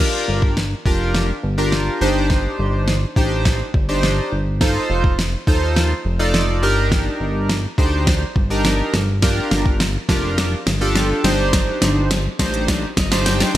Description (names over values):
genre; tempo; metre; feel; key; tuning
dance-pop; 104 BPM; 4/4; straight; G minor; A4 = 440 Hz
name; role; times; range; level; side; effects
chorused retro synth keys; accompaniment; 0.0-13.6 s; D4 to G5; -21 LUFS; equal; none
chorused synth bass; bass; 0.3-13.6 s; F1 to Eb2; -20 LUFS; equal; sidechain pumping
smooth R&B drum kit; drums; 0.4-13.6 s; hi-hat, kick drum, snare drum; -19 LUFS; equal; gated reverb
room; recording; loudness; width
light reverb; bright 1980s-style digital production; -16 LUFS; side -14 dB against mid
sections
0.0-13.6 A section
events
build-up 0.0-13.6; drum fill 0.0-13.6; synth keys fill 12.7-13.6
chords
0.0 Gm7; 2.0 Cmadd9/G; 4.6 F7; 6.6 Ebmaj7/G; 9.2 Gm7; 11.2 Cmadd9/G